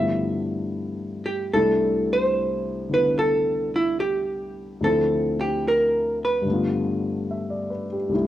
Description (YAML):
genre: jazz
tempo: 73 BPM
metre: 4/4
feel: swing 69% on 8ths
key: C major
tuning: A4 = 441 Hz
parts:
  - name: hollow-body jazz guitar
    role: melody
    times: 0.0-7.8 s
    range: E4 to E5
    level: -22 LUFS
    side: right 1 dB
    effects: none
  - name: dark baby grand piano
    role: accompaniment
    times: 0.0-8.3 s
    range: C2 to E5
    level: -25 LUFS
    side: left 2 dB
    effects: none
room: moderate large studio reverb, RT60 1.1 s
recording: worn, warbling old tape, cassette tape, warbly pitch drift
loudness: -21 LUFS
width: side -13 dB against mid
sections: 0.0-8.1 A section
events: none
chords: 0.0 G13; 1.5 C69; 4.8 Dm7; 6.4 G7